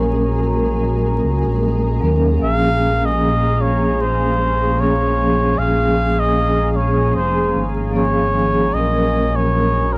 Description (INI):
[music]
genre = trip hop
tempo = 76 BPM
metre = 4/4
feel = swing 57% on 16ths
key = Bb minor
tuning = A4 = 437 Hz
[part]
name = trumpet with cup mute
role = melody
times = 0.0-10.0 s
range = Bb4 to F5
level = -23 LUFS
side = equal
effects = cassette tape, tape echo
[part]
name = vibraphone with soft mallets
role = accompaniment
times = 0.0-10.0 s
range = F3 to Bb4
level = -22 LUFS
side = equal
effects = tremolo, cassette tape, tape echo
[part]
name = dark analog pad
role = sustained chords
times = 0.0-10.0 s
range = Db4 to Bb5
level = -30 LUFS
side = equal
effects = chorus, phaser, cassette tape
[part]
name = dark detuned saw bass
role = bass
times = 0.0-10.0 s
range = F1 to Eb2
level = -22 LUFS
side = equal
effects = none
[part]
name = flickering grainy texture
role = texture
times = 0.0-10.0 s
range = Ab3 to Ab4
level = -33 LUFS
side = equal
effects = none
[sound]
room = moderate studio reverb, RT60 0.6 s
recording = home recording on cassette, vinyl crackle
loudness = -17 LUFS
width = mono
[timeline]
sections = 0.0-10.0 A section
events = none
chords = 0.0 Gb/Bb; 2.4 Bbm7; 8.7 Gb/Bb